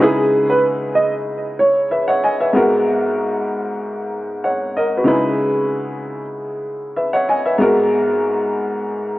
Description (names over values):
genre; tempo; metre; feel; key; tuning
hip hop; 95 BPM; 4/4; swing 58% on 16ths; G# minor; A4 = 441 Hz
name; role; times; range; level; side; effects
dark upright piano; melody; 0.0-1.9 s; G#4 to D#5; -17 LUFS; right 2 dB; high-pass filter, low-pass filter, digital delay
warm upright piano; accompaniment; 0.0-9.2 s; G#2 to G#5; -16 LUFS; equal; high-pass filter, low-pass filter
room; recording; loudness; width
moderate plate reverb, RT60 2.7 s; worn, warbling old tape, cassette tape, warbly pitch drift; -15 LUFS; side -17 dB against mid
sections
0.0-2.5 A section; 2.5-9.2 B section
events
none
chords
0.0 C#m7; 2.5 G#m7; 5.1 C#m7; 7.6 G#m7